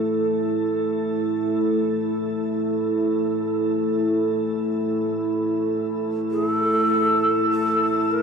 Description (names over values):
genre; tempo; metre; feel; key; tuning
ambient; free time; none; none; unclear; A4 = 441 Hz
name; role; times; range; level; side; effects
dark analog pad; sustained chords; 0.0-8.2 s; A3 to A4; -21 LUFS; right 1 dB; lush chorus, shimmer reverb
breathy bright long shakuhachi; melody; 6.3-8.2 s; A4 to B4; -20 LUFS; equal; shimmer reverb, ping-pong delay
room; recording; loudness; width
wet huge ambient reverb, RT60 8.9 s; dark, warm production; -20 LUFS; side -6 dB against mid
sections
0.0-8.2 A section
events
none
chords
0.0 A5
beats
free time